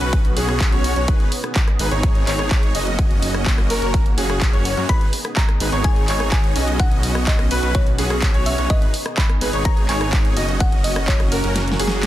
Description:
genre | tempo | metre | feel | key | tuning
EDM, festival progressive house | 126 BPM | 4/4 | straight | G# minor | A4 = 440 Hz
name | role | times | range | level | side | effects
lush unison pad | sustained chords | 0.0-12.1 s | A#3 to G#4 | -29 LUFS | right 1 dB | chorus, phaser, sidechain pumping
warm concert grand piano | arpeggios | 0.0-12.1 s | G#4 to D#5 | -28 LUFS | equal | sidechain pumping, digital delay
supersaw chords | riff | 0.0-12.1 s | C#4 to D#5 | -25 LUFS | right 1 dB | analog chorus, sidechain pumping, digital delay
detuned saw bass | bass | 0.0-12.1 s | F#1 to F#2 | -24 LUFS | equal | sidechain pumping
big-room dance drum kit | drums | 0.0-12.1 s | handclaps, hi-hat, rim click, snare drum | -26 LUFS | equal | studio ambience
downlifter | sound effects | 0.0-1.1 s | none | barely audible | none | none
electronic kick drum | drums | 0.1-11.2 s | none | -17 LUFS | equal | overdrive, studio ambience
thumb-piano-like synth pluck | melody | 4.9-12.1 s | C#5 to B5 | -29 LUFS | left 1 dB | chorus, digital delay
room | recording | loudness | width
light reverb, digital ambience | dense, heavily limited modern master | -16 LUFS | side -14 dB against mid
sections
0.0-12.1 A section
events
kick drops out 11.6-12.1; drum fill 11.6-12.1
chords
0.0 Bsus2; 1.1 G#m; 3.0 F#; 4.9 G#m; 6.8 Bsus2; 8.7 G#m; 10.6 F#

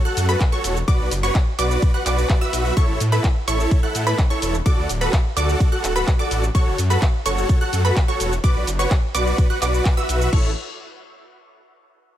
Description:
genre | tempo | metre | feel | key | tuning
EDM, festival progressive house | 127 BPM | 4/4 | straight | A major | A4 = 439 Hz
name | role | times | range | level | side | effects
wide unison pluck | arpeggios | 0.0-10.5 s | B5 to F#6 | -28 LUFS | right 2 dB | auto-pan, sidechain pumping, dub echo
big supersaw lead | riff | 0.0-10.5 s | E4 to F#5 | -23 LUFS | right 1 dB | sidechain pumping, dub echo
wide detuned saw bass | bass | 0.2-10.5 s | D1 to A2 | -21 LUFS | equal | chorus, sidechain pumping
house drum kit | drums | 0.2-10.4 s | cabasa, crash cymbal, handclaps, hi-hat, ride cymbal | -29 LUFS | equal | none
electronic kick drum | drums | 0.4-10.4 s | none | -18 LUFS | equal | none
room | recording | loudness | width
digital ambience | none | -17 LUFS | side -12 dB against mid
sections
0.0-10.3 A section; 10.3-12.2 B section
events
drop 0.0-10.3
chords
0.0 F#m; 0.9 Bm; 2.8 A; 4.7 D; 6.5 F#m; 8.4 Bm; 10.3 A

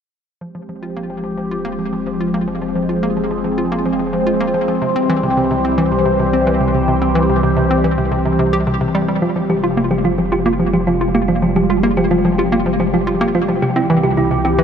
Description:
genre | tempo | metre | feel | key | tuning
ambient, sequencer-driven space music | 109 BPM | 4/4 | straight | F minor | A4 = 440 Hz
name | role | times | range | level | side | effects
phased analog pad | sustained chords | 0.4-14.6 s | C3 to C5 | -17 LUFS | equal | phaser, chorus
hollow square pluck | riff | 0.4-14.6 s | C3 to G4 | -19 LUFS | equal | chorus, tape echo
warm sub bass | bass | 0.4-14.6 s | F1 to C2 | -26 LUFS | equal | none
thumb-piano-like synth pluck | arpeggios | 9.2-14.6 s | E4 to G4 | -21 LUFS | right 3 dB | chorus, auto-pan, tape echo
room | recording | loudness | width
wet huge ambient reverb, RT60 7.5 s | none | -14 LUFS | side -8 dB against mid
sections
0.4-9.2 A section; 9.2-14.6 B section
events
fade-in on synth arpeggio sound 0.4-9.2; fade-in on sub bass 0.4-9.2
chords
0.4 Fmadd9; 4.8 C; 9.2 Fmadd9; 13.6 C

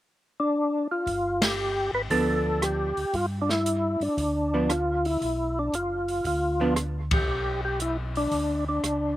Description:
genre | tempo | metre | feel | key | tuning
soul jazz organ trio | 116 BPM | 4/4 | swing 68% on 8ths | G mixolydian | A4 = 440 Hz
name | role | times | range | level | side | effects
percussive tonewheel organ | melody | 0.4-9.2 s | D4 to B4 | -26 LUFS | left 1 dB | slow rotary speaker, overdrive, chorus vibrato, slapback echo
mellow tonewheel organ | bass | 1.1-9.2 s | F#1 to G2 | -31 LUFS | equal | slow rotary speaker
open jazz drum kit | drums | 1.1-9.0 s | hi-hat, kick drum, ride cymbal, rim click, snare drum | -31 LUFS | equal | none
vintage hollow-body jazz guitar | accompaniment | 2.1-6.8 s | F3 to D4 | -27 LUFS | right 2 dB | none
room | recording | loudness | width
little or no reverb | recorded outdoors, with no room sound | -24 LUFS | side -14 dB against mid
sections
0.0-1.1 A section; 1.1-9.2 B section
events
band accent 1.3, 7.0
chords
0.0 N.C.; 1.1 G7

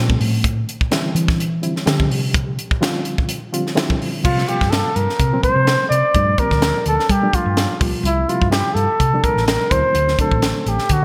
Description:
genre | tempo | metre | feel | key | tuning
electric jazz fusion | 126 BPM | 4/4 | swing 54% on 16ths | unclear | A4 = 444 Hz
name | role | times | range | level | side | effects
reed electric piano | accompaniment | 0.0-11.0 s | Bb2 to G4 | -26 LUFS | equal | harmonic tremolo
hollow-body short-scale fingered electric bass | bass | 0.0-11.0 s | A1 to G3 | -22 LUFS | equal | none
crisp fusion drum kit | drums | 0.1-11.0 s | crash cymbal, hi-hat, kick drum, snare drum | -23 LUFS | equal | gated reverb
trumpet with bucket mute | melody | 4.2-11.0 s | E4 to D5 | -21 LUFS | equal | delay
room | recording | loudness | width
moderate lush hall reverb, RT60 1.9 s, small room ambience | bright 1980s-style digital production, faint mains hum | -18 LUFS | mono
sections
0.0-4.2 A section; 4.2-11.0 B section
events
fingered electric bass solo 0.0-4.2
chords
0.4 Dm11; 4.2 C7sus4; 6.1 Gm9; 7.8 C7sus4; 9.7 D9

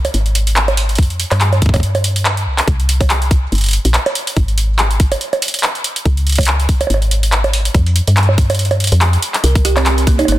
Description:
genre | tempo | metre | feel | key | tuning
IDM | 142 BPM | 4/4 | swing 56% on 16ths | unclear | A4 = 440 Hz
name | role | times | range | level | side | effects
woody FM bass | bass | 0.0-10.4 s | G1 to G2 | -14 LUFS | equal | none
booming analog drum machine | drums | 0.0-10.4 s | bongos, handclaps, hi-hat | -17 LUFS | right 1 dB | none
electronic kick drum | drums | 1.0-10.2 s | none | -13 LUFS | equal | none
kalimba | arpeggios | 9.4-10.4 s | Bb3 to Bb4 | -17 LUFS | right 4 dB | tape echo
room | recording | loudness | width
digital ambience | dense, heavily limited modern master | -12 LUFS | side -15 dB against mid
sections
0.0-9.4 A section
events
kick drops out 9.0-9.4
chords
0.0 N.C.; 1.0 F5; 2.7 C5; 4.4 N.C.; 6.1 Db5; 7.7 Fsus2; 9.4 C7(no3)

